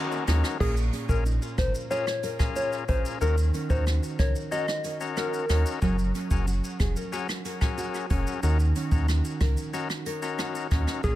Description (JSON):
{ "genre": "dancehall", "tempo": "92 BPM", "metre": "4/4", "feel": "straight", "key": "Eb minor", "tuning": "A4 = 436 Hz", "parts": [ { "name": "overdriven tonewheel organ", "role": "accompaniment", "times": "0.0-11.2 s", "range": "Db4 to Bb4", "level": "-34 LUFS", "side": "left 7 dB", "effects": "dub echo" }, { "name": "dark studio string section", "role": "sustained chords", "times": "0.0-0.6 s", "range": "Eb3 to Gb4", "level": "-41 LUFS", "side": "left 1 dB", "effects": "none" }, { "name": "nylon-string guitar", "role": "arpeggios", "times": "0.0-11.2 s", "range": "Bb2 to Bb4", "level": "-33 LUFS", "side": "right 2 dB", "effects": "none" }, { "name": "jazz brush drum kit", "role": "drums", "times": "0.1-11.2 s", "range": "crash cymbal, hi-hat, kick drum, rim click, shaker", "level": "-30 LUFS", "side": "equal", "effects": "dub echo" }, { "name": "sub bass with octave", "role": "bass", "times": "0.3-11.2 s", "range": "F1 to Eb2", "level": "-25 LUFS", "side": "equal", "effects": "none" }, { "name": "soft struck synth lead", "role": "melody", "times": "0.6-5.6, 11.0-11.2 s", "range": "Ab4 to Eb5", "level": "-31 LUFS", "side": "left 1 dB", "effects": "chorus, tremolo, dub echo" } ], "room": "small room ambience", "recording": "echo-heavy mix", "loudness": "-24 LUFS", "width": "side -14 dB against mid", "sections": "0.6-11.2 A section", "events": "break 0.0-0.6", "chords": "0.0 Ebm7; 0.6 Bbm7; 3.2 Ebm7; 5.8 Gbadd9; 8.4 Ebm7" }